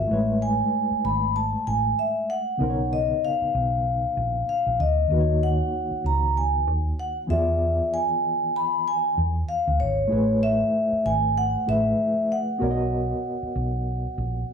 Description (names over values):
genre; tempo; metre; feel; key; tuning
lush 1970s-style soul; 96 BPM; 4/4; swing 58% on 16ths; unclear; A4 = 440 Hz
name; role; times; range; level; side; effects
vibraphone with medium mallets; melody; 0.0-14.5 s; C#5 to B5; -24 LUFS; left 1 dB; none
reed electric piano; accompaniment; 0.0-14.5 s; C#3 to E5; -28 LUFS; left 1 dB; fast tremolo
hollow-body short-scale fingered electric bass; bass; 0.0-14.4 s; G#1 to E2; -26 LUFS; right 1 dB; none
room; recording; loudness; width
moderate large studio reverb, RT60 0.8 s; band playing live in one room; -21 LUFS; side -7 dB against mid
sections
0.0-14.5 A section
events
none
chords
0.1 Amaj9; 2.6 Bmaj9; 5.1 D#m7; 7.3 E7b9; 10.1 Amaj9; 12.6 Bmaj9